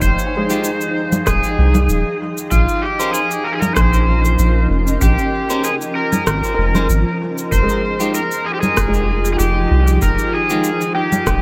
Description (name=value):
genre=ambient dub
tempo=96 BPM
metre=4/4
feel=swing 54% on 16ths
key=F minor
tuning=A4 = 435 Hz
part: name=overdriven slide guitar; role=melody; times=0.0-11.4 s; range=F4 to C5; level=-22 LUFS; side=equal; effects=dub echo
part: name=granular cloud pad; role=sustained chords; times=0.0-11.4 s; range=F3 to F5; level=-26 LUFS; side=equal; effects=built-in reverb
part: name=felt-muted upright piano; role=arpeggios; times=0.0-2.5, 6.5-11.4 s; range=G3 to Ab5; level=-29 LUFS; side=equal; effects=dub echo
part: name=soft dub sub bass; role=bass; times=0.0-11.4 s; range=Eb1 to C2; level=-18 LUFS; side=equal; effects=none
part: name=electronic cabasa, congas and rim click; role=drums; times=0.0-11.4 s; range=none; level=-25 LUFS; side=equal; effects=dub echo
part: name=electronic kick drum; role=drums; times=0.0-11.4 s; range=none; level=-24 LUFS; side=equal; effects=none
part: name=clean electric guitar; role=stabs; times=0.5-10.7 s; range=Ab3 to C5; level=-29 LUFS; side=equal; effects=dub echo
room=light reverb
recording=none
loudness=-17 LUFS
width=mono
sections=0.0-11.4 A section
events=none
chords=0.0 Fm9; 2.5 Bbm7; 7.5 Fm9